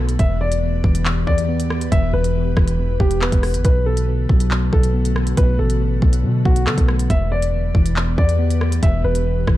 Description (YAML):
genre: hip hop, drill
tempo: 139 BPM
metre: 4/4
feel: half-time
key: unclear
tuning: A4 = 440 Hz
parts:
  - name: dark concert grand piano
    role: melody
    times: 0.0-9.6 s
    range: F#4 to E5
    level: -25 LUFS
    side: left 1 dB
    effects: low-pass filter, ping-pong delay
  - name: mellow tine electric piano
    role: accompaniment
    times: 0.0-9.6 s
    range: E2 to B3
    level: -22 LUFS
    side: left 1 dB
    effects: low-pass filter
  - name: ethereal airy pad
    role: sustained chords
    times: 0.0-9.6 s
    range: D3 to B4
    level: -28 LUFS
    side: left 1 dB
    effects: ensemble chorus, built-in reverb
  - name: hard-hitting 808-style bass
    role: bass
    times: 0.0-9.6 s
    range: E1 to D3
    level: -20 LUFS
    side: equal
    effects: none
  - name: drill drum kit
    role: drums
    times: 0.1-9.6 s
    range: handclaps, hi-hat, kick drum, rim click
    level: -18 LUFS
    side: equal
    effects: none
room: digital ambience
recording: dark, warm production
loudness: -15 LUFS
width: side -15 dB against mid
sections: 0.0-9.6 A section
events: none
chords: 0.2 Em; 3.6 Bm7; 7.1 Em